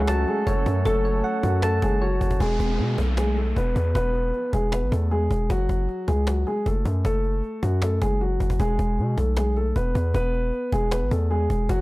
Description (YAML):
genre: hip hop, trap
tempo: 155 BPM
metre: 4/4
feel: half-time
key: E major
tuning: A4 = 439 Hz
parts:
  - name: dark baby grand piano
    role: melody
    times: 0.0-11.8 s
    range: F#3 to B4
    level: -26 LUFS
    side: left 1 dB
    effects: low-pass filter
  - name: soft electric-piano-like synth keys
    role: accompaniment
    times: 0.0-2.4 s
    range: A4 to A5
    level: -27 LUFS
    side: right 2 dB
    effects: chorus, low-pass filter
  - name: hollow soft pad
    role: sustained chords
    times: 0.0-2.4 s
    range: F#3 to A4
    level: -32 LUFS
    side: right 1 dB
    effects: chorus
  - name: hard-hitting 808-style bass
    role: bass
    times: 0.0-11.8 s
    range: E1 to B2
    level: -23 LUFS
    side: equal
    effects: none
  - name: cajon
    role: drums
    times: 0.1-11.8 s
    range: none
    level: -30 LUFS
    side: equal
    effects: none
  - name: downlifter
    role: sound effects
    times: 2.4-5.5 s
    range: none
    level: -35 LUFS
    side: left 1 dB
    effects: none
room: small room ambience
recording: dry, gritty hardware recording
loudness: -21 LUFS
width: side -20 dB against mid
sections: 0.0-2.4 A section; 2.4-11.8 B section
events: none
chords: 0.0 F#madd9; 2.4 E; 5.5 F#madd9; 8.6 E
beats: 0.08 0.47 | 0.85 1.24 1.63 2.02 | 2.40 2.79 3.18 3.56 | 3.95 4.34 4.72 5.11 | 5.50 5.89 6.27 6.66 | 7.05 7.43 7.82 8.21 | 8.60 8.98 9.37 9.76 | 10.14 10.53 10.92 11.31 | 11.69